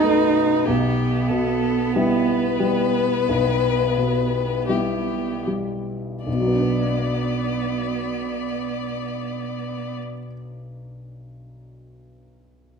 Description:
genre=classical, slow romantic movement for piano quartet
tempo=36-49 BPM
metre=4/4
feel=rubato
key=B minor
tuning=A4 = 441 Hz
part: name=rich violin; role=melody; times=0.0-10.0 s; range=G4 to D5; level=-26 LUFS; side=left 11 dB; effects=none
part: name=rich cello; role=second line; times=0.0-10.0 s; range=B3 to D#4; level=-24 LUFS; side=right 6 dB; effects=none
part: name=warm grand piano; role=accompaniment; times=0.0-12.8 s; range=B1 to B4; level=-24 LUFS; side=left 1 dB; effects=none
room=moderate scoring stage reverb, RT60 1.8 s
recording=minimal, uncompressed stereo recording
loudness=-20 LUFS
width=side -6 dB against mid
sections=0.0-6.3 A section; 6.3-12.2 B section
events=slowing down 0.0-6.3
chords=0.0 B7; 0.7 Em/B; 6.3 Bm

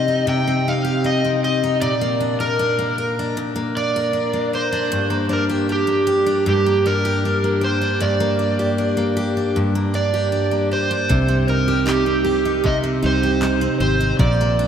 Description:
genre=acoustic pop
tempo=78 BPM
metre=4/4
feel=straight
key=C minor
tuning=A4 = 441 Hz
part: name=overdriven slide guitar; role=melody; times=0.0-14.7 s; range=G4 to G5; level=-21 LUFS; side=right 2 dB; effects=slapback echo
part: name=picked steel-string acoustic guitar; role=accompaniment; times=0.0-14.7 s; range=G2 to Bb4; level=-20 LUFS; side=left 1 dB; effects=none
part: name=fretless electric bass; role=bass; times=11.1-14.7 s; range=Ab1 to C2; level=-22 LUFS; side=equal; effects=none
part: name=organic electronic drum kit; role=drums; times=11.1-14.4 s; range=handclaps, kick drum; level=-24 LUFS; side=equal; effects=overdrive
room=wet cathedral reverb, RT60 6.4 s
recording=in a vast, echoing space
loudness=-17 LUFS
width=side -8 dB against mid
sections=0.0-14.7 A section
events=none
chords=0.0 Cm; 1.8 Bb; 4.9 Gm; 11.1 Cm

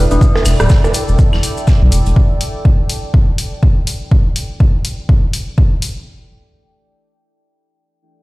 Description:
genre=minimal techno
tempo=123 BPM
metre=4/4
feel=swing 59% on 16ths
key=E minor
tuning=A4 = 439 Hz
part: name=saturated sub bass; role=bass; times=0.0-2.1 s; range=D1 to B1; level=-12 LUFS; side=equal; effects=sidechain pumping
part: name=deep dark ambient pad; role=texture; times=0.0-4.1 s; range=E4 to G5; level=-26 LUFS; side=right 1 dB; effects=chorus, built-in reverb, sidechain pumping
part: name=loose indie drum kit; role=drums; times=0.1-2.2 s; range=hi-hat, shaker, snare drum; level=-31 LUFS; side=right 2 dB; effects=high-pass filter on hats, high-pass filter on snare, high-pass filter on perc, high-pass filter on room
part: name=maracas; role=percussion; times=0.1-2.1 s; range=none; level=-29 LUFS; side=left 2 dB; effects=none
part: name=electronic kick drum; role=drums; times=0.2-5.7 s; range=none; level=-12 LUFS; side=equal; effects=none
part: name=electronic percussion blips, claves and rim click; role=percussion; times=0.4-1.4 s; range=none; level=-20 LUFS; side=right 2 dB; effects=overdrive, tape echo
part: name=electronic hi-hat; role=drums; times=0.5-5.9 s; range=none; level=-24 LUFS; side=left 2 dB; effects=none
room=small room reverb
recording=played on a big sound system in a bare room, stone room reverb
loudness=-11 LUFS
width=side -21 dB against mid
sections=0.0-6.1 A section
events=fade-out on ambient pad 0.0-4.1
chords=0.0 Em7

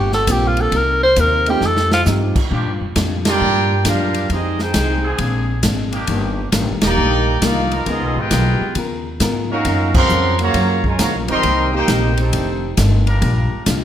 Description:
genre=jazz, big band swing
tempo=134 BPM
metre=4/4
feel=swing 66% on 8ths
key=Bb major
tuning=A4 = 440 Hz
part: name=mellow tenor saxophone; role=melody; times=0.0-2.0 s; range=F4 to C5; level=-16 LUFS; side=equal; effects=none
part: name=hollow-body jazz guitar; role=accompaniment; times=0.0-13.8 s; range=F2 to Bb4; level=-25 LUFS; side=left 5 dB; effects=none
part: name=upright bass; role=bass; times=0.0-13.8 s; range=Eb1 to Bb2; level=-19 LUFS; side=equal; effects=none
part: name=swinging big-band drum kit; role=drums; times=0.1-13.8 s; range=crash cymbal, hi-hat, kick drum, ride cymbal, snare drum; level=-21 LUFS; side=equal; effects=none
part: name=dark baby grand piano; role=accompaniment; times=0.3-2.3 s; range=A3 to G4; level=-25 LUFS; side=right 7 dB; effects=none
part: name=muted trombone section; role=sustained chords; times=2.5-13.6 s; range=D3 to Bb4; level=-28 LUFS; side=equal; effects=none
part: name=mellow trumpet section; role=melody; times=3.3-12.8 s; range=Cb4 to C6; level=-20 LUFS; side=equal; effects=none
part: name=clear trombone section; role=second line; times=3.3-12.7 s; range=Db3 to Ab4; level=-22 LUFS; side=right 4 dB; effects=none
room=light reverb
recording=none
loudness=-14 LUFS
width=side -10 dB against mid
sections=0.0-2.5 A section; 2.5-13.8 B section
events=tenor saxophone solo 0.0-2.5; drum fill 1.6-2.1; band accent 3.2, 6.8, 9.9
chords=0.0 Bb6; 0.7 Cm7; 1.6 F9; 2.5 Bb6; 4.3 Fm9; 5.2 Bb9; 6.1 Ebmaj7; 7.9 Db13; 9.7 Gbmaj7; 11.4 Cm7; 12.3 F13; 13.2 Bb6

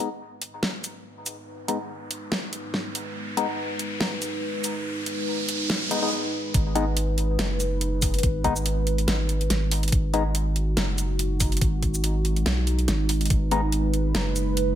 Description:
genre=deep dubstep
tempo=142 BPM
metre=4/4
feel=swing 55% on 16ths, half-time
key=G# minor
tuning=A4 = 440 Hz
part: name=dark analog pad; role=sustained chords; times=1.0-14.8 s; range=G#3 to B4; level=-30 LUFS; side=right 1 dB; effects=chorus, phaser
part: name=percussive organ stab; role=stabs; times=0.0-10.2, 13.5-13.6 s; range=G#3 to D#4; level=-29 LUFS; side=left 3 dB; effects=chorus, dub echo
part: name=soft dub sub bass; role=bass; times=0.0-14.8 s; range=F#1 to B1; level=-24 LUFS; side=equal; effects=high-pass filter
part: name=riser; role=sound effects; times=1.9-6.1 s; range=none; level=-32 LUFS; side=right 1 dB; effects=none
part: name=dubstep drum kit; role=drums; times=0.4-14.7 s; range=hi-hat, shaker, snare drum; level=-28 LUFS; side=equal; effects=none
part: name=electronic kick drum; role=drums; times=6.5-13.4 s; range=none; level=-25 LUFS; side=equal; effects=none
room=light reverb, digital ambience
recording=none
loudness=-23 LUFS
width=side -11 dB against mid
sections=0.0-6.5 A section; 6.5-14.8 B section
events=build-up 0.0-6.5; filter sweep on synth stab 0.0-6.5; riser 1.9-6.1; break 6.1-6.5; drop 6.5-14.8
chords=0.0 G#m

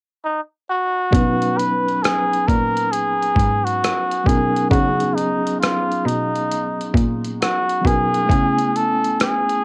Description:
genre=lo-fi hip hop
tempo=67 BPM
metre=4/4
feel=swing 62% on 16ths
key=unclear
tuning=A4 = 438 Hz
part: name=trumpet with cup mute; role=melody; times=0.2-9.6 s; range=D#4 to B4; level=-22 LUFS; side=equal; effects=cassette tape
part: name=mellow tine electric piano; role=accompaniment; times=1.1-9.6 s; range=F#3 to G#5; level=-26 LUFS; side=equal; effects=cassette tape
part: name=clear cello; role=bass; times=1.1-9.6 s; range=G#2 to C#3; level=-25 LUFS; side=equal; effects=none
part: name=dusty soul sampler-style drum kit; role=drums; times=1.1-9.6 s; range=hi-hat, kick drum, rim click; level=-24 LUFS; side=equal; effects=cassette tape
room=light reverb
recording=home recording on cassette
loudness=-19 LUFS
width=mono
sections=0.0-1.1 A section; 1.1-9.6 B section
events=none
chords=0.0 N.C.; 1.1 Bmaj7; 4.7 C#9sus4; 8.3 Amaj9

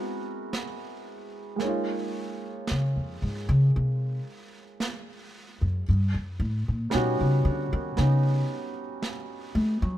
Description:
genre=jazz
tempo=57 BPM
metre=4/4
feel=swing 66% on 8ths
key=unclear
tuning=A4 = 436 Hz
part: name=warm concert grand piano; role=accompaniment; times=0.0-10.0 s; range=G3 to Db5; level=-32 LUFS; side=right 2 dB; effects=none
part: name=brushed snare drum and snare drum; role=drums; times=0.5-10.0 s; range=none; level=-37 LUFS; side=right 2 dB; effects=none
part: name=upright bass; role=bass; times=2.7-10.0 s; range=F2 to A3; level=-24 LUFS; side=equal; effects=none
room=little or no reverb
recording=close, detailed microphones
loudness=-25 LUFS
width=side -12 dB against mid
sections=0.0-10.0 A section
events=upright bass solo 0.0-10.0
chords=0.0 Ab7alt; 1.6 Db69; 5.9 Eb7alt

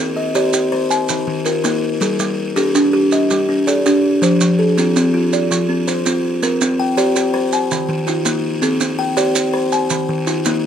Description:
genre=southern african traditional, mbira-style interlocking cycle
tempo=109 BPM (dotted quarters)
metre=12/8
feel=straight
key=C equiheptatonic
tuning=A4 = 437 Hz
part: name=buzzing kalimba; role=arpeggios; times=0.0-10.7 s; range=Eb3+43c to G5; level=-17 LUFS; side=left 2 dB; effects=none
part: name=kalimba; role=arpeggios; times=0.0-10.7 s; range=Eb3+43c to A5-43c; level=-19 LUFS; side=right 2 dB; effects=none
part: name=maracas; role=percussion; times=0.3-10.6 s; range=none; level=-23 LUFS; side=right 6 dB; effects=none
room=moderate small room reverb, RT60 0.6 s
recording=none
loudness=-14 LUFS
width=side -8 dB against mid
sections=0.0-6.4 A section; 6.4-10.7 B section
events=none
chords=0.0 Cm; 0.9 Eb5; 2.0 G5; 4.2 F; 6.4 C5; 7.5 Eb5; 8.6 C5; 9.7 Eb5

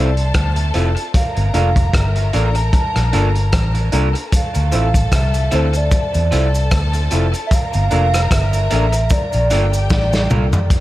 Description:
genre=lovers rock reggae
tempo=75 BPM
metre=4/4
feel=swing 56% on 16ths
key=unclear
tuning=A4 = 439 Hz
part: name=hollow clarinet-like synth lead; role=melody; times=0.0-10.5 s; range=C5 to A5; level=-23 LUFS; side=right 2 dB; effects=chorus, dub echo
part: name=warm studio string section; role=second line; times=0.0-10.7 s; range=G4 to Bb5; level=-27 LUFS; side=left 2 dB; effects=dub echo
part: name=warm grand piano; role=accompaniment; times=0.0-10.6 s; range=Bb3 to A4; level=-26 LUFS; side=left 3 dB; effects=none
part: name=electric guitar through a small old amp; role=stabs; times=0.0-10.5 s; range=F3 to Bb4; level=-26 LUFS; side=right 4 dB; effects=dub echo
part: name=vintage muted fingered electric bass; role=bass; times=0.0-10.5 s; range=F1 to E2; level=-16 LUFS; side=equal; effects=none
part: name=crunchy breakbeat drum kit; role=drums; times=0.2-10.8 s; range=hi-hat, kick drum, rim click, snare drum, toms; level=-18 LUFS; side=equal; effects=dub echo
part: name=cabasa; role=percussion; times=4.3-10.8 s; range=none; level=-35 LUFS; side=left 2 dB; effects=none
room=small room ambience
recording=none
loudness=-14 LUFS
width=side -16 dB against mid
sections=0.0-10.7 A section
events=drum fill 9.9-10.7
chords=0.0 Dm9; 1.1 Gm7; 4.3 Dm9; 7.5 Gm7

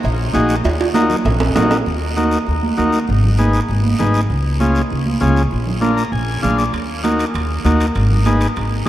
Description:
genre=latin, cumbia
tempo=197 BPM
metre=4/4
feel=straight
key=Eb minor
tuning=A4 = 437 Hz
part: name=upright bass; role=bass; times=0.0-8.8 s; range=Ab1 to Eb2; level=-18 LUFS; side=equal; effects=none
part: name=congas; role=percussion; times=0.0-8.9 s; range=none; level=-21 LUFS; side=right 4 dB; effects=none
part: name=cowbell and timbales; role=percussion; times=0.0-1.8, 6.7-8.9 s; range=none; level=-25 LUFS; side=right 3 dB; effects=none
part: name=guiro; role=percussion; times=0.0-8.9 s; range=none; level=-32 LUFS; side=right 3 dB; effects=none
part: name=combo organ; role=accompaniment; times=0.3-8.9 s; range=Db4 to Bb5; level=-19 LUFS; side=left 2 dB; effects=none
room=moderate huge ambient reverb, RT60 8.0 s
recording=in a vast, echoing space, lossy compression artefacts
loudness=-14 LUFS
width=side -13 dB against mid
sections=0.0-1.9 A section; 1.9-8.9 B section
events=drum fill 0.7-1.9; transistor combo organ fill 5.8-6.7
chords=0.0 Ebm; 3.1 Abm; 4.3 Db; 5.5 Bb7; 6.7 Ebm; 8.0 Abm

